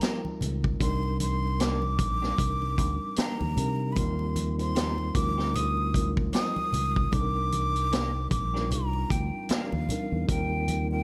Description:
lush 1970s-style soul; 76 BPM; 4/4; swing 58% on 16ths; A4 = 438 Hz
breathy jazz flute; melody; 0.0-11.0 s; F5 to Eb6; -34 LUFS; equal
mellow tine electric piano; accompaniment; 0.0-11.0 s; Gb3 to C5; -36 LUFS; equal
electric guitar through a small old amp; riff; 0.0-9.7 s; Eb3 to G4; -40 LUFS; equal; ensemble chorus
vintage drum kit; drums; 0.0-10.9 s; hi-hat, kick drum, snare drum; -32 LUFS; equal
congas; percussion; 0.0-10.9 s; -40 LUFS; equal
fingered electric bass; bass; 0.4-11.0 s; Bb1 to C3; -32 LUFS; equal
small room ambience; -28 LUFS; mono
0.0-11.0 A section
0.0 Eb69; 0.8 Cm9; 4.0 Eb69; 7.1 Cm9; 10.3 Eb69

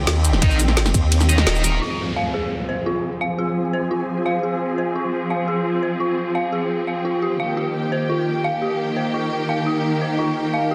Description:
dark technical drum and bass; 172 BPM; 4/4; straight; F minor; A4 = 440 Hz
clear studio string section; sustained chords; 0.0-10.7 s; Eb3 to Ab4; -27 LUFS; equal; sidechain pumping, low-pass filter
formant-sweep wobble bass; bass; 0.0-1.8 s; Eb1 to Eb2; -20 LUFS; equal; chorus, tube saturation
drum and bass drum kit; drums; 0.1-10.7 s; crash cymbal, hi-hat, ride cymbal, shaker, snare drum; -24 LUFS; equal; low-pass filter on hats, low-pass filter on cymbals, low-pass filter on perc, low-pass filter on snare, low-pass filter on room
thick fuzz guitar; stabs; 0.4-1.8 s; Eb4 to Eb5; -28 LUFS; equal; distortion, tape echo
electronic kick drum; drums; 0.4-1.0 s; -21 LUFS; equal
dark detuned synth bell; arpeggios; 1.8-10.7 s; F4 to F5; -27 LUFS; equal; chorus, phaser, sidechain pumping, tape echo
downlifter; sound effects; 1.8-4.6 s; -32 LUFS; equal
granular cloud pad; texture; 3.2-10.7 s; Eb4 to Ab5; -28 LUFS; equal; built-in reverb, sidechain pumping
wet digital room reverb, RT60 0.9 s, digital ambience; dense, heavily limited modern master; -21 LUFS; mono
0.0-1.8 A section; 1.8-10.7 B section
drop 0.0-1.8; kick drops out 1.1-1.8; band accent 1.5; filter sweep on string section 1.8-10.7
0.0 Eb; 1.8 Fm; 7.4 Eb

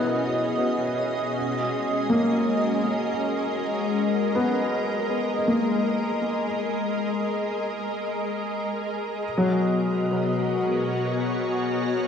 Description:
ambient; free time; A4 = 440 Hz
soft additive organ-like pad; sustained chords; 0.0-12.1 s; B2 to F#5; -24 LUFS; equal; ensemble chorus, built-in reverb, cassette tape
felt-muted upright piano; arpeggios; 0.0-12.1 s; F#3 to A#4; -26 LUFS; left 1 dB; cassette tape, analog delay
wet studio reverb, RT60 0.5 s; home recording on cassette; -23 LUFS; side -7 dB against mid
0.0-1.4 A section; 1.4-12.1 B section
0.0 Emaj7/B; 1.4 G#madd9; 9.2 Bsus2

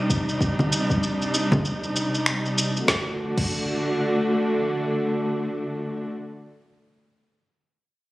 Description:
organic downtempo; 97 BPM; 4/4; swing 60% on 16ths; A4 = 441 Hz
warm studio string section; sustained chords; 0.0-6.1 s; C3 to F#4; -24 LUFS; equal; sidechain pumping
afro-pop drum kit; drums; 0.1-3.5 s; congas, crash cymbal, finger snaps, shaker, snare drum; -25 LUFS; equal
electronic kick drum; drums; 0.1-3.5 s; -25 LUFS; equal
frame drum; percussion; 1.5-1.6 s; -28 LUFS; left 1 dB
moderate digital room reverb, RT60 1.1 s, digital ambience; recorded on a phone in the room, studio reverb; -22 LUFS; side -18 dB against mid
0.0-2.9 A section; 2.9-5.4 B section
0.0 Cm; 2.9 D

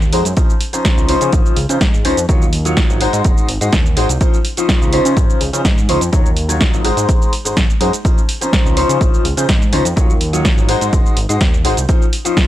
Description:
filtered disco house; 125 BPM; 4/4; straight; Db major; A4 = 439 Hz
fat analog bass; bass; 0.0-11.9 s; Gb1 to Db3; -19 LUFS; equal; tube saturation, sidechain pumping
punchy analog drum machine; drums; 0.0-12.5 s; hi-hat, shaker, snare drum; -20 LUFS; right 1 dB; sidechain pumping on hats, sidechain pumping on perc
bright concert grand piano; accompaniment; 0.1-12.5 s; F3 to Db5; -18 LUFS; left 2 dB; phaser, sidechain pumping
electronic kick drum; drums; 0.4-12.5 s; -14 LUFS; equal
little or no reverb; dry, gritty hardware recording, transformer saturation; -12 LUFS; side -14 dB against mid
0.0-12.5 A section
0.4 Dbmaj9; 2.3 Ebm9; 3.0 Ab7; 4.2 Dbmaj9; 6.1 Ebm9; 6.8 Ab7; 8.0 Dbmaj9; 10.0 Ebm9; 10.7 Ab7; 11.9 Dbmaj9

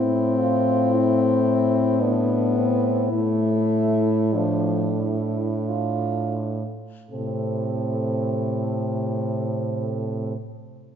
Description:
classical, lyrical piece for horn quartet; 40-58 BPM; 3/4; rubato; A minor; A4 = 440 Hz
mellow French horn; melody; 0.0-10.3 s; D4 to A4; -31 LUFS; left 5 dB
clear French horn; second line; 0.0-10.3 s; C4 to F4; -29 LUFS; right 6 dB
mellow French horn; accompaniment; 0.0-10.3 s; C3 to C4; -24 LUFS; left 4 dB
mellow French horn; bass; 0.0-10.3 s; A2; -26 LUFS; right 2 dB
wet scoring stage reverb, RT60 2.0 s; recorded in a church or concert hall, nothing above 7.5 kHz; -20 LUFS; side -8 dB against mid
0.0-7.1 A section; 7.1-11.0 B section
slowing down 0.0-7.1
0.0 Am; 3.1 D5/A; 7.1 Am

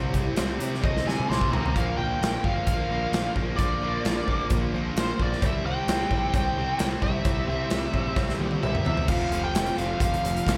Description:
classic rock; 131 BPM; 4/4; straight; A4 = 440 Hz
picked steel-string acoustic guitar; accompaniment; 0.0-10.6 s; F2 to G4; -41 LUFS; equal
tonewheel organ; sustained chords; 0.0-10.6 s; G3 to C5; -42 LUFS; equal
overdriven electric guitar; riff; 0.0-10.6 s; F2 to C4; -36 LUFS; equal
sludgy distorted guitar; riff; 0.0-10.6 s; F2 to C4; -36 LUFS; equal; overdrive
growling picked electric bass; bass; 0.0-10.6 s; F1 to C3; -34 LUFS; equal; overdrive
big rock drum kit; drums; 0.1-10.6 s; crash cymbal, hi-hat, kick drum, snare drum, toms; -29 LUFS; equal
cowbell; percussion; 0.1-1.4, 5.4-9.0 s; -45 LUFS; equal
bluesy overdriven lead guitar; melody; 0.8-10.6 s; C5 to C6; -32 LUFS; equal; distortion, slapback echo
moderate recital hall reverb, RT60 1.3 s, small room ambience; big arena sound; -26 LUFS; mono
0.0-1.8 A section; 1.8-9.1 B section; 9.1-10.6 C section
lead electric guitar solo 0.0-1.8; drum fill 0.8-1.8, 8.2-9.1
0.0 C; 1.8 Bbadd9; 5.4 C; 9.1 F

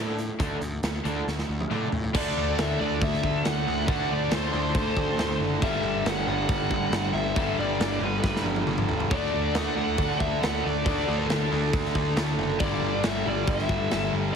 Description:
hard rock; 138 BPM; 4/4; straight; A4 = 440 Hz
overdriven semi-hollow guitar; riff; 0.0-14.4 s; G2 to D4; -32 LUFS; left 9 dB
sludgy distorted guitar; riff; 0.0-14.4 s; G2 to D4; -32 LUFS; right 11 dB; overdrive
fuzz picked electric bass; bass; 0.0-14.3 s; F#1 to A2; -30 LUFS; equal; overdrive
big rock drum kit; drums; 0.2-14.0 s; crash cymbal, hi-hat, kick drum, snare drum, toms; -29 LUFS; equal
tight distorted guitar; riff; 2.1-14.4 s; G2 to D4; -34 LUFS; left 1 dB; distortion
bluesy overdriven lead guitar; melody; 2.2-14.4 s; B4 to F#5; -30 LUFS; left 2 dB; distortion, tape echo
light reverb; heavily compressed radio sound, multiband compression; -23 LUFS; side -6 dB against mid
0.0-2.1 A section; 2.1-14.4 B section
drum fill 1.3-2.1, 8.2-9.1
0.0 D5; 5.6 G5; 9.1 D; 12.6 G5

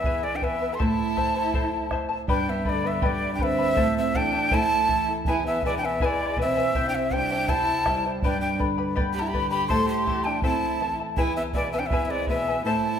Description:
andean folk, Andean ensemble; 81 BPM; 2/4; straight; A minor; A4 = 439 Hz
breathy bright quena; melody; 0.0-13.0 s; D5 to C6; -26 LUFS; equal
dark violin; second line; 0.0-13.0 s; G3 to A4; -30 LUFS; right 3 dB
charango; accompaniment; 0.0-13.0 s; E4 to B5; -30 LUFS; left 5 dB
nylon-string guitar; accompaniment; 0.0-13.0 s; E2 to E4; -30 LUFS; right 1 dB
bombo; percussion; 0.0-12.4 s; -30 LUFS; right 1 dB
wet recital hall reverb, RT60 1.6 s; recorded in a church or concert hall; -22 LUFS; side -8 dB against mid
0.0-2.3 A section; 2.3-13.0 A section
0.0 E; 0.8 Am; 2.3 G; 3.8 Am; 5.3 E; 6.7 C; 8.2 G; 9.7 Am; 11.2 E

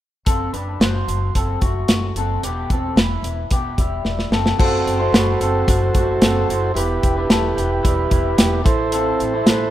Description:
jangly indie pop; 111 BPM; 4/4; straight; A4 = 440 Hz
electric guitar through a small old amp; arpeggios; 0.3-9.7 s; G3 to C5; -24 LUFS; left 2 dB; wide subtle chorus, tape echo
upright bass; bass; 0.3-9.7 s; E1 to A1; -23 LUFS; equal
modern studio drum kit; drums; 0.3-9.6 s; crash cymbal, hi-hat, kick drum, snare drum; -18 LUFS; equal
combo organ; accompaniment; 4.6-9.7 s; E4 to C5; -20 LUFS; right 3 dB
studio reverb; rough home demo mix; -16 LUFS; side -13 dB against mid
0.3-4.6 A section; 4.6-9.7 B section
drum fill 4.1-4.6
0.3 F#dim; 2.4 Em; 4.3 F#dim; 6.8 Em; 8.7 Am

